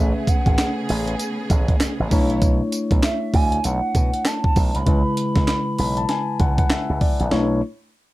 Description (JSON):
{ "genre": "R&B, new jack swing", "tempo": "98 BPM", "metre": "4/4", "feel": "swing 60% on 16ths", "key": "B dorian", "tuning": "A4 = 443 Hz", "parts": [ { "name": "hollow clarinet-like synth lead", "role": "melody", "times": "0.0-6.7 s", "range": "E5 to B5", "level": "-27 LUFS", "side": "right 2 dB", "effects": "chorus, analog delay" }, { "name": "mellow tine electric piano", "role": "accompaniment", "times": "0.0-7.6 s", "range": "C#3 to B5", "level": "-24 LUFS", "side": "left 2 dB", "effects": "none" }, { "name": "warm symphonic string section", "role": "sustained chords", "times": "0.0-2.4 s", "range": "C#3 to C#5", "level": "-31 LUFS", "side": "right 2 dB", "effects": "none" }, { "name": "slap bass with an envelope filter", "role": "bass", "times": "0.0-7.6 s", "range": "G#1 to B2", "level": "-23 LUFS", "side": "right 1 dB", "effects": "none" }, { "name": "breakbeat sampler-style drum kit", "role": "drums", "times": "0.3-7.5 s", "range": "handclaps, hi-hat, kick drum, snare drum, tambourine", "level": "-20 LUFS", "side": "right 1 dB", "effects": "none" } ], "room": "little or no reverb", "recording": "dark, warm production", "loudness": "-18 LUFS", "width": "side -17 dB against mid", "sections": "0.0-7.3 A section", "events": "tine electric piano fill 5.5-7.3", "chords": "0.0 Amaj9; 2.1 Bm11; 4.9 C#m7; 7.3 Bm11" }